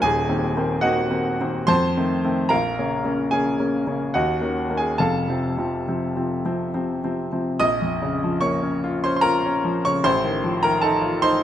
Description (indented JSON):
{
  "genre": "classical, romantic character piece for solo piano",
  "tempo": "67-77 BPM",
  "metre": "3/4",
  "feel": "rubato",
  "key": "unclear",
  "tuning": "A4 = 440 Hz",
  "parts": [
    { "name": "clear grand piano", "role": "solo", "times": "0.0-11.4 s", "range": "Eb1 to Eb6", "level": "-20 LUFS", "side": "equal", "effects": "none" }
  ],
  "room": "moderate recital hall reverb, RT60 1.7 s",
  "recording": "close, detailed microphones",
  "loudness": "-20 LUFS",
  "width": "side -11 dB against mid",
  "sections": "0.0-7.6 A section; 7.6-11.4 B section",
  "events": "none",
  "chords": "0.0 Cm7b5/Eb; 1.7 F7; 2.5 Bbm; 4.1 Ebm7; 5.0 F; 7.6 Bbm; 10.0 F7/A",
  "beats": "| 0.04 0.82 1.69 | 2.51 3.32 4.14 | 4.99 5.86 6.74 | 7.62 8.43 9.24 | 10.04 10.85"
}